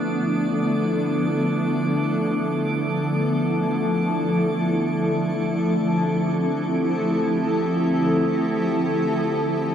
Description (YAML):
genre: ambient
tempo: free time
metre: none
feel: none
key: unclear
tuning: A4 = 440 Hz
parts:
  - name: granular cloud pad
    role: sustained chords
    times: 0.0-9.7 s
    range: F3 to A4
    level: -21 LUFS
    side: equal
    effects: built-in reverb
  - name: organ-like drone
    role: drone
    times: 0.0-9.7 s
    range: D3 to A3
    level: -27 LUFS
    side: right 1 dB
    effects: ensemble chorus, built-in reverb
  - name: drifting glass-harmonics texture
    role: texture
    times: 0.0-9.7 s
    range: D6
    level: -36 LUFS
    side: right 3 dB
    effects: chorus, built-in reverb
room: wet concert hall reverb, RT60 2.1 s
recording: dark, warm production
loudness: -20 LUFS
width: side -8 dB against mid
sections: 0.0-9.7 A section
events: fade-out on synth texture 0.0-9.7; filter sweep on ambient pad 0.0-9.7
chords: 0.0 Dm69; 3.9 Fmaj9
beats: free time